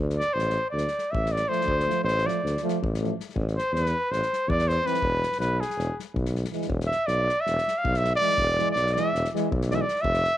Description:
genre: balkan folk, Balkan brass band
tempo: 322 BPM (eighths)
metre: 9/8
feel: straight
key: E phrygian dominant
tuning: A4 = 440 Hz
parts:
  - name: warm tuba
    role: bass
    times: 0.0-10.2 s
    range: E1 to E2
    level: -28 LUFS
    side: equal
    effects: none
  - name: unplugged drum kit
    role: percussion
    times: 0.1-10.3 s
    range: kick drum, snare drum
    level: -35 LUFS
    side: left 2 dB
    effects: none
  - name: warm trumpet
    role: melody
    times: 0.2-10.4 s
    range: G#4 to F5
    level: -25 LUFS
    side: equal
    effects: none
  - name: warm euphonium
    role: accompaniment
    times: 1.5-9.8 s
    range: G#3 to C4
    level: -33 LUFS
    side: left 15 dB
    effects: none
  - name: warm trombone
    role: accompaniment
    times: 1.5-9.8 s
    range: E3 to F3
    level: -32 LUFS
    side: right 15 dB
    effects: none
room: light reverb, small room reverb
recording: 1960s-style stereo with parts hard left and right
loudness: -23 LUFS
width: side -12 dB against mid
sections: 0.0-10.4 A section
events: trumpet solo 0.0-10.4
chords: 0.0 Dm; 3.3 Am; 5.0 E

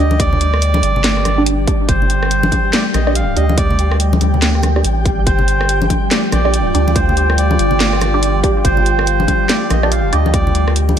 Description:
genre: deep dubstep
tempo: 142 BPM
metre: 4/4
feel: swing 60% on 16ths, half-time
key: G minor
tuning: A4 = 440 Hz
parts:
  - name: melodica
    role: melody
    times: 0.0-10.7 s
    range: C5 to F5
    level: -20 LUFS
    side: right 1 dB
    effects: dub echo
  - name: deep dark ambient pad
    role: sustained chords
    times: 0.0-11.0 s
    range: G3 to F4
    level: -21 LUFS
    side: left 1 dB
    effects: chorus, built-in reverb
  - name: filtered dub chord stab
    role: stabs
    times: 0.0-10.2 s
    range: D4 to D5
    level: -22 LUFS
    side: right 2 dB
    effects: phaser, analog chorus, dub echo
  - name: soft dub sub bass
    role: bass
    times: 0.0-11.0 s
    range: G1 to D2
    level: -16 LUFS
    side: equal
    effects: none
  - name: flickering grainy texture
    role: texture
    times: 0.0-11.0 s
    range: G5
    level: -25 LUFS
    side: right 2 dB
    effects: built-in reverb
  - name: congas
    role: percussion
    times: 0.1-11.0 s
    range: none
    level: -24 LUFS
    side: left 2 dB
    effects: dub echo
  - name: electronic kick drum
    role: drums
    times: 0.2-10.4 s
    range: none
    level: -17 LUFS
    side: equal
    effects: overdrive
  - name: garage drum kit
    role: drums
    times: 0.2-11.0 s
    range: hi-hat, rim click, snare drum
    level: -20 LUFS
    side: equal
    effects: none
room: moderate plate reverb, RT60 2.0 s, digital ambience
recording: dreamy mix soaked in reverb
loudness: -12 LUFS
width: side -9 dB against mid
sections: 0.0-11.0 A section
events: none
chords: 0.0 G5

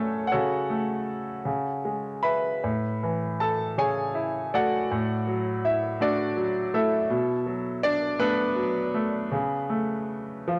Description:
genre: classical, lyrical solo piano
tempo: 53 BPM (dotted quarters)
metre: 6/8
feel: uneven beats, rubato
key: unclear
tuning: A4 = 440 Hz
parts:
  - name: clear baby grand piano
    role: solo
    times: 0.0-10.6 s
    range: A2 to B5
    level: -27 LUFS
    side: equal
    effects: cassette tape
room: moderate studio reverb, RT60 0.5 s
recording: home recording on cassette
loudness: -27 LUFS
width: mono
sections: 0.0-10.6 A section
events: none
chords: 0.3 F#m/C#; 1.5 C#5; 2.6 A; 4.9 D/A; 7.1 Bm7; 9.3 Bm9/C#

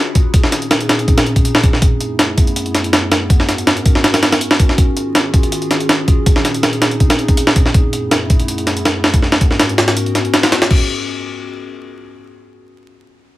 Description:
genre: drum and bass, jungle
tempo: 162 BPM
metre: 4/4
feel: straight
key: unclear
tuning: A4 = 440 Hz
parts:
  - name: warbly tape-like pad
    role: sustained chords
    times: 0.0-10.9 s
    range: Gb2 to Bb4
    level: -20 LUFS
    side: equal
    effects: chorus, built-in reverb
  - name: breakbeat sampler-style drum kit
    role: drums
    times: 0.2-10.8 s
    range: crash cymbal, hi-hat, kick drum, snare drum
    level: -12 LUFS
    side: equal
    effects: none
room: little or no reverb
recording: vinyl crackle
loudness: -11 LUFS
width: side -16 dB against mid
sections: 0.0-10.7 A section; 10.7-12.2 B section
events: none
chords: 0.3 Bbm11; 1.8 Gbm11; 3.3 Abm11; 4.8 Ebm11; 6.3 Bbm11; 7.7 Gbm11; 9.2 Abm11; 10.7 Dbadd11

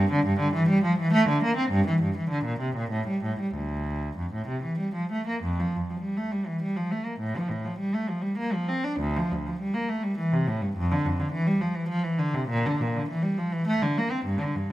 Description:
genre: classical, baroque-style suite movement for unaccompanied cello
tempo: 92-106 BPM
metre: 3/4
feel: rubato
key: D minor, F major from 5.4 s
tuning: A4 = 440 Hz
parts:
  - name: rich cello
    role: solo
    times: 0.0-14.7 s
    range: D2 to D4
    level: -24 LUFS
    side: equal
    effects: none
room: moderate recital hall reverb, RT60 1.3 s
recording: close, detailed microphones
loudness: -24 LUFS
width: side -15 dB against mid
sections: 0.0-5.4 A section; 5.4-14.7 A section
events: none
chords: none

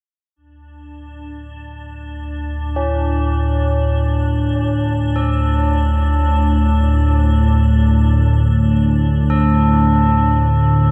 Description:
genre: ambient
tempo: free time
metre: none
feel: none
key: unclear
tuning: A4 = 440 Hz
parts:
  - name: analog drone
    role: drone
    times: 1.3-10.9 s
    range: D2 to A2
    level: -17 LUFS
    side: equal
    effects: chorus
  - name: icy glass pad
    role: texture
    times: 0.8-10.9 s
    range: D4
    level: -28 LUFS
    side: equal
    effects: chorus, built-in reverb
  - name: tubular bells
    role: arpeggios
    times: 2.8-10.9 s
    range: C#4 to A4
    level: -25 LUFS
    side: equal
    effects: diffuse ambient delay
room: moderate huge ambient reverb, RT60 7.4 s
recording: dark, warm production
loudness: -16 LUFS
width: mono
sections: 0.4-10.9 A section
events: filter sweep on synth drone 0.4-10.9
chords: 0.4 D5

